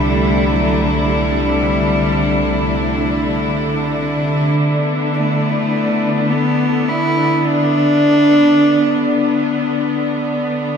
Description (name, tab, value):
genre	ambient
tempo	free time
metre	none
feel	none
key	unclear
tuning	A4 = 440 Hz
part	rich cello	melody	0.0-9.7 s	F#3 to E4	-17 LUFS	equal	shimmer reverb, ping-pong delay
part	warm chamber string section	sustained chords	0.0-10.8 s	C3 to E4	-16 LUFS	equal	low-pass filter, shimmer reverb
part	handpan	arpeggios	0.0-2.6 s	none	barely audible	none	none
part	round analog bass	bass	0.0-4.5 s	C2	-24 LUFS	equal	none
room	wet cathedral reverb, RT60 6.1 s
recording	in a vast, echoing space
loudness	-13 LUFS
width	side -6 dB against mid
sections	0.0-4.6 A section; 4.6-10.8 B section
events	none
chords	0.0 C6; 4.6 Bm/D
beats	free time